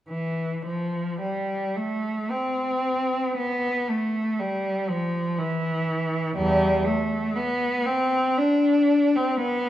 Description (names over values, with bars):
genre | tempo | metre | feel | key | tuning
classical, free, expressive piece for unaccompanied cello | 53-62 BPM | 3/4 | rubato | A minor | A4 = 437 Hz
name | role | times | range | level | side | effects
rich cello | solo | 0.1-9.7 s | E2 to D4 | -22 LUFS | equal | none
room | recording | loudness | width
moderate concert hall reverb, RT60 1.9 s | dark, warm production | -22 LUFS | side -13 dB against mid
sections
0.1-9.7 A section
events
none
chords
none